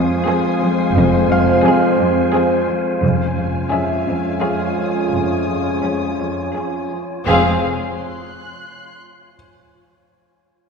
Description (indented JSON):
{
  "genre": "cinematic",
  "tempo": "87 BPM",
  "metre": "3/4",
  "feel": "straight",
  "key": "F minor",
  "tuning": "A4 = 440 Hz",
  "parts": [
    { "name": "muted studio violin section", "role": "melody", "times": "0.0-7.7 s", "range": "F5 to Ab5", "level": "-26 LUFS", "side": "left 3 dB", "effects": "none" },
    { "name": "muted studio violin section", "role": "second line", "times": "0.0-7.7 s", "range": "Ab4", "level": "-24 LUFS", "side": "equal", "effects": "none" },
    { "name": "muted studio viola section", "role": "accompaniment", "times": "0.0-7.7 s", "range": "C4 to Db4", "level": "-26 LUFS", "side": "left 1 dB", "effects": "none" },
    { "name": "dark French horn section", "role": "sustained chords", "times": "0.0-7.6 s", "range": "Ab3 to Db4", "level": "-21 LUFS", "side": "left 2 dB", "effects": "none" },
    { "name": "dark trombone section", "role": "sustained chords", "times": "0.0-7.6 s", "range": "F2 to F3", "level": "-24 LUFS", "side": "right 4 dB", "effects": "none" },
    { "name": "wind-like tuned noise texture", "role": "sustained chords", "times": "0.0-7.7 s", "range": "F4 to Ab5", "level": "-25 LUFS", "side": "equal", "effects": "built-in reverb" },
    { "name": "muted studio cello section", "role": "riff", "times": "0.0-7.1 s", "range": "F2 to F3", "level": "-23 LUFS", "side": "right 1 dB", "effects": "none" },
    { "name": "bright baby grand piano", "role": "texture", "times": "0.0-7.3 s", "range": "F4 to Ab5", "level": "-28 LUFS", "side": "equal", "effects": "none" },
    { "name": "muted studio violin section", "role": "texture", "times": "0.0-9.0 s", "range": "F5 to Gb6", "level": "-30 LUFS", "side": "left 5 dB", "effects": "none" },
    { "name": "muted studio cello section", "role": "bass", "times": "1.0-7.7 s", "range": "F2", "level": "-23 LUFS", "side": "right 2 dB", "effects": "none" },
    { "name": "muted studio double bass section", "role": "bass", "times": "1.0-7.7 s", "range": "F1", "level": "-24 LUFS", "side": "right 3 dB", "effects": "none" },
    { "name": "timpani", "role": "percussion", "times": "7.3-7.6 s", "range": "F2", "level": "-30 LUFS", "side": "right 2 dB", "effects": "none" }
  ],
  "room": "wet scoring stage reverb, RT60 2.0 s",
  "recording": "heard from further back in the room",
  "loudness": "-15 LUFS",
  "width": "side -5 dB against mid",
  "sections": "0.0-7.3 A section; 7.3-9.3 B section",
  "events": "none",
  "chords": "0.0 Fm; 3.0 Db/F; 7.3 Fm"
}